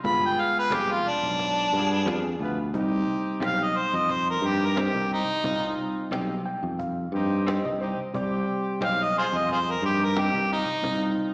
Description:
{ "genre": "straight-eighth soul blues", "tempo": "89 BPM", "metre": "4/4", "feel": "swing 56% on 16ths", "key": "C harmonic minor", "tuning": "A4 = 440 Hz", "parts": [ { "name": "bright reed electric piano", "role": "accompaniment", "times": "0.0-11.3 s", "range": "G3 to G5", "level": "-32 LUFS", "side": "equal", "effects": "none" }, { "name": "bright horn section", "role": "sustained chords", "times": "0.0-11.3 s", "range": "B3 to B4", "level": "-33 LUFS", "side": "equal", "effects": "none" }, { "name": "fingered electric bass", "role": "bass", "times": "0.0-11.1 s", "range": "F1 to G2", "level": "-28 LUFS", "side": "equal", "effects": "none" }, { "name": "cajon", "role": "drums", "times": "0.0-11.3 s", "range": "none", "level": "-37 LUFS", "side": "equal", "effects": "slapback echo" }, { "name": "clear harmonica", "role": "melody", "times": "0.1-11.2 s", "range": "D4 to B5", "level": "-24 LUFS", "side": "equal", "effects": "overdrive, slapback echo" }, { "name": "direct-recorded clean electric guitar", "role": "stabs", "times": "0.7-10.4 s", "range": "C3 to Ab4", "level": "-33 LUFS", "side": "equal", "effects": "lush chorus, slapback echo, analog delay" } ], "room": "light reverb", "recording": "live gig heard through the venue's PA, recital hall reverb, small speaker sound", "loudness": "-23 LUFS", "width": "side -30 dB against mid", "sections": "0.0-2.7 A section; 2.7-11.3 B section", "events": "harmonica solo 0.0-2.7; reed electric piano fill 6.1-8.1", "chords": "0.0 G7b9; 2.7 Cm", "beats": "| 0.05 0.72 1.40 2.07 | 2.74 3.42 4.09 4.77 | 5.44 6.12 6.79 7.47 | 8.14 8.82 9.49 10.16 | 10.84" }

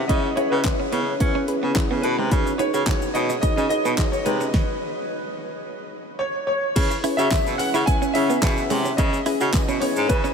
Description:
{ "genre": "dance-pop", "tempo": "108 BPM", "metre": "4/4", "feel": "straight", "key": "C# minor", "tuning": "A4 = 440 Hz", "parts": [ { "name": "warm grand piano", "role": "melody", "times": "0.0-10.3 s", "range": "B4 to G#5", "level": "-25 LUFS", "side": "equal", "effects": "lush chorus, diffuse ambient delay" }, { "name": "soft round pluck", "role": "accompaniment", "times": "0.0-10.3 s", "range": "C#4 to C#5", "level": "-27 LUFS", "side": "left 2 dB", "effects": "chorus, sidechain pumping" }, { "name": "direct-recorded clean electric guitar", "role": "riff", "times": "0.0-10.3 s", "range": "G#3 to F#4", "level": "-30 LUFS", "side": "right 5 dB", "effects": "wide subtle chorus" }, { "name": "clear baritone saxophone", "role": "bass", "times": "0.1-10.3 s", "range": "G#2 to C#4", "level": "-24 LUFS", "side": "equal", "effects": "sidechain pumping" }, { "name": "pop drum kit", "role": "drums", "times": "0.1-10.3 s", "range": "crash cymbal, handclaps, hi-hat, kick drum, shaker, snare drum", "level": "-24 LUFS", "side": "equal", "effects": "none" }, { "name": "tambourine", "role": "percussion", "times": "6.8-10.3 s", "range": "none", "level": "-43 LUFS", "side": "right 7 dB", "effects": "none" } ], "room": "wet huge ambient reverb, RT60 7.6 s", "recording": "dreamy mix soaked in reverb", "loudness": "-19 LUFS", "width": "side -6 dB against mid", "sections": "0.0-6.8 A section; 6.8-10.3 B section", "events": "stop 4.5-6.8", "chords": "0.0 C#m7; 2.3 G#m7; 6.8 C#m7", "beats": "| 0.10 0.65 1.21 1.76 | 2.32 2.87 3.43 3.98 | 4.54 5.09 5.65 6.21 | 6.76 7.32 7.87 8.43 | 8.98 9.54 10.10" }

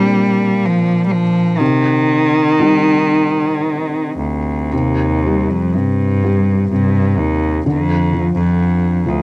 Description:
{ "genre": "celtic folk, Celtic slow air", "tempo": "54-65 BPM", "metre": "3/4", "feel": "rubato", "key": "C minor", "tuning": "A4 = 440 Hz", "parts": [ { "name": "clear cello", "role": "melody", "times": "0.0-9.2 s", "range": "D2 to G3", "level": "-14 LUFS", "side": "equal", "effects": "cassette tape" }, { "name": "felt-muted upright piano", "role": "accompaniment", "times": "0.0-9.2 s", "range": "Bb2 to Eb4", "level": "-18 LUFS", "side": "left 1 dB", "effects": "none" } ], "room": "moderate small room reverb, RT60 0.5 s", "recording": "home recording on cassette", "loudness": "-12 LUFS", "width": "side -24 dB against mid", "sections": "0.0-4.7 A section; 4.7-9.2 B section", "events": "none", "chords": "0.0 Bbadd9; 1.6 Cm; 4.7 C5; 7.7 Dm", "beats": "0.64 | 1.61 2.60 3.66 | 4.73 5.73 6.71 | 7.66 8.59" }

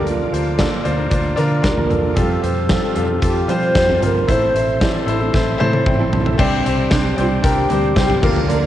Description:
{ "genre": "piano-driven pop", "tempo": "114 BPM", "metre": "4/4", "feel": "straight", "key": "C mixolydian", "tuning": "A4 = 440 Hz", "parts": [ { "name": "mellow wooden-headed alto flute", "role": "melody", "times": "0.0-8.6 s", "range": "D4 to C5", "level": "-22 LUFS", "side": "equal", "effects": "none" }, { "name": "bright concert grand piano", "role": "accompaniment", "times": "0.0-8.7 s", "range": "A2 to A5", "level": "-21 LUFS", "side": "left 4 dB", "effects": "cassette tape" }, { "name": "tonewheel organ", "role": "sustained chords", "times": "0.0-8.7 s", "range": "Bb3 to D6", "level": "-33 LUFS", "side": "equal", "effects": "chorus vibrato, fast rotary speaker, cassette tape" }, { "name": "fingerpicked steel-string acoustic guitar", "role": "riff", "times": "0.0-8.7 s", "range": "A2 to C5", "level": "-22 LUFS", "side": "right 5 dB", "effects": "cassette tape" }, { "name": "vintage muted fingered electric bass", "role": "bass", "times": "0.0-8.7 s", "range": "G1 to F3", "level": "-22 LUFS", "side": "equal", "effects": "none" }, { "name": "huge arena drum kit", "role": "drums", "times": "0.1-8.6 s", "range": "crash cymbal, hi-hat, kick drum, snare drum, toms", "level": "-20 LUFS", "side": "equal", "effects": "cassette tape" } ], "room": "light reverb, small room reverb", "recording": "home recording on cassette", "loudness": "-14 LUFS", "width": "side -12 dB against mid", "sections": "0.0-6.4 A section; 6.4-8.7 B section", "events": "drum fill 5.3-6.4", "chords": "0.0 Bb/D; 2.2 Fadd9; 4.3 Am; 6.4 Csus2", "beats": "| 0.07 0.59 1.12 1.65 | 2.17 2.70 3.23 3.75 | 4.28 4.81 5.33 5.86 | 6.39 6.91 7.44 7.97 | 8.49" }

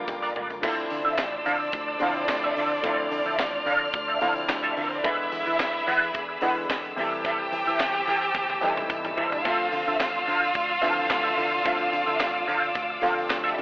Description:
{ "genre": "disco", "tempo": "109 BPM", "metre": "4/4", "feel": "straight", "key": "D minor", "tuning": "A4 = 444 Hz", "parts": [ { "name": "clear studio violin section", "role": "second line", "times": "0.0-13.6 s", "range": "G3 to G5", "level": "-28 LUFS", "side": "equal", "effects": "none" }, { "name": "semi-hollow electric guitar", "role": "accompaniment", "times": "0.0-13.6 s", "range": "C4 to G5", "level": "-27 LUFS", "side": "right 1 dB", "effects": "wah, phaser" }, { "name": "warm grand piano", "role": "accompaniment", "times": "0.0-13.6 s", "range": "C3 to F4", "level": "-32 LUFS", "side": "left 1 dB", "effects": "none" }, { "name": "clear studio string section", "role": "sustained chords", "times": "0.0-13.6 s", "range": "F3 to F6", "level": "-32 LUFS", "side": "equal", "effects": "none" }, { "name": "fingered electric bass", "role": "bass", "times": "0.0-13.6 s", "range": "A1 to E3", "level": "-40 LUFS", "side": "equal", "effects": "none" }, { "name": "tight funk drum kit", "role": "drums", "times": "0.1-13.6 s", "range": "crash cymbal, handclaps, hi-hat, kick drum, snare drum, toms", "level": "-31 LUFS", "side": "equal", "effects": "none" }, { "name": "tambourine", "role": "percussion", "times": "0.1-13.6 s", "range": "none", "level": "-54 LUFS", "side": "right 1 dB", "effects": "none" } ], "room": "moderate echo chamber reverb, RT60 1.8 s", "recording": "telephone sound", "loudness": "-23 LUFS", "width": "side -22 dB against mid", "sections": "0.6-13.6 A section", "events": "drum fill 0.0-0.6, 8.4-9.5", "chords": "0.0 Gm7; 0.6 Dm9; 5.0 E7; 7.0 Am7/E; 9.5 Dm9", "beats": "0.08 | 0.63 1.18 1.73 2.29 | 2.84 3.39 3.94 4.49 | 5.04 5.60 6.15 6.70 | 7.25 7.80 8.35 8.90 | 9.46 10.01 10.56 11.11 | 11.66 12.21 12.76 13.31" }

